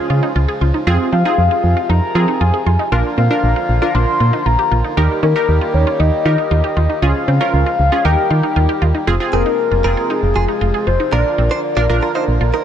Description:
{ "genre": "synth-pop", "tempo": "117 BPM", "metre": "4/4", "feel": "straight", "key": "F minor", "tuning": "A4 = 440 Hz", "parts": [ { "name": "soft octave-layered synth lead", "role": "melody", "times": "0.0-12.2 s", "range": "Ab4 to C6", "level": "-19 LUFS", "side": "left 4 dB", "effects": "chorus, phaser, dub echo" }, { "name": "funky polysynth comp", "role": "accompaniment", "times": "0.0-12.5 s", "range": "C4 to Bb4", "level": "-21 LUFS", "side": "right 2 dB", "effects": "chorus" }, { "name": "pedal harmonium", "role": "sustained chords", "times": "0.0-12.6 s", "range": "C3 to G4", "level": "-25 LUFS", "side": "right 2 dB", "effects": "stereo widening" }, { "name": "wide unison pluck", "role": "arpeggios", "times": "0.1-12.6 s", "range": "C4 to Ab4", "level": "-24 LUFS", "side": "right 2 dB", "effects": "dub echo" }, { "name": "solid FM bass", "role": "bass", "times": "0.1-12.5 s", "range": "F1 to F3", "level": "-15 LUFS", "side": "equal", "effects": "none" }, { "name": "direct-recorded clean electric guitar", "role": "second line", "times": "9.3-12.6 s", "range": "Ab4 to D5", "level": "-23 LUFS", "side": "right 5 dB", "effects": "lush chorus, dub echo" } ], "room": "light reverb", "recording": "echo-heavy mix", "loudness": "-13 LUFS", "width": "side -9 dB against mid", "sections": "0.0-9.1 A section; 9.1-12.6 B section", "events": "none", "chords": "0.0 Db; 0.9 Fm; 2.9 Bb; 5.0 Eb; 7.0 Db; 8.0 Eb; 9.1 Fm; 11.1 Bb" }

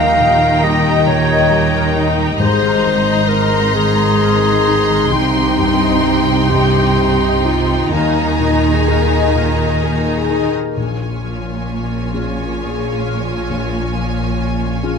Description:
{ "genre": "cinematic, emotional film score for orchestra", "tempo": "43 BPM (dotted quarters)", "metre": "6/8", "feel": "uneven beats, rubato", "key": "Bb dorian", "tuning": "A4 = 440 Hz", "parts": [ { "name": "clear symphonic violin section", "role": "melody", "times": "0.0-15.0 s", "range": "Ab5 to C6", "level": "-24 LUFS", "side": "left 1 dB", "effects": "none" }, { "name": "clear symphonic violin section", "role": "second line", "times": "0.0-15.0 s", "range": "Db5 to Bb5", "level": "-24 LUFS", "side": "equal", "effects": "none" }, { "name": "dark clarinet", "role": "second line", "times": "0.0-9.3 s", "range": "Eb4 to F5", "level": "-17 LUFS", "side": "equal", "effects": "none" }, { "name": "dark baby grand piano", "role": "accompaniment", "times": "0.0-15.0 s", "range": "Bb1 to Ab4", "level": "-21 LUFS", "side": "left 3 dB", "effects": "none" }, { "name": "rich studio viola section", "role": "accompaniment", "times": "0.0-15.0 s", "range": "Eb4 to F4", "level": "-24 LUFS", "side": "right 1 dB", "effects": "none" }, { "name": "concert harp", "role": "arpeggios", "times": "0.0-15.0 s", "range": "Ab2 to Eb5", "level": "-21 LUFS", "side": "left 11 dB", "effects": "none" }, { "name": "rich symphonic double bass section", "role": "bass", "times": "0.0-15.0 s", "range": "Ab1 to Eb2", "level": "-21 LUFS", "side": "right 4 dB", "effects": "none" }, { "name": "warm symphonic cello section", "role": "bass", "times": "0.0-15.0 s", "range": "Ab2 to Eb3", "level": "-22 LUFS", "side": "right 4 dB", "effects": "none" } ], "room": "light reverb", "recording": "close, detailed microphones", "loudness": "-13 LUFS", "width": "side -6 dB against mid", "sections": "0.0-10.8 A section; 10.8-15.0 B section", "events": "none", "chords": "0.0 Eb; 2.4 Abadd9; 5.1 Cm; 7.9 Ebsus4; 10.8 Bbm7" }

